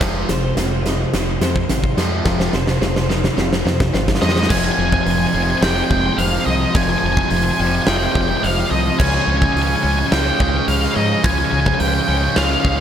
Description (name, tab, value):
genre	post-rock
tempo	107 BPM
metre	4/4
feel	straight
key	F minor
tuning	A4 = 440 Hz
part	twelve-string electric guitar	arpeggios	0.0-12.8 s	F2 to C5	-24 LUFS	left 1 dB	ensemble chorus, digital delay
part	tight distorted guitar	riff	0.0-12.8 s	F2 to Db4	-22 LUFS	right 1 dB	distortion
part	growling fingered electric bass	bass	0.0-12.8 s	F1 to Ab2	-22 LUFS	equal	overdrive
part	huge arena drum kit	drums	0.0-12.8 s	crash cymbal, hi-hat, kick drum, snare drum	-20 LUFS	equal	none
part	octave-fuzz lead guitar	melody	4.2-12.8 s	Eb5 to Ab5	-20 LUFS	equal	distortion, digital delay
room	little or no reverb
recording	none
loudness	-15 LUFS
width	side -9 dB against mid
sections	0.0-4.5 A section; 4.5-12.8 B section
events	build-up 0.0-4.5; drum fill 0.0-4.5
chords	0.0 Fm7; 4.5 Fm; 9.0 Db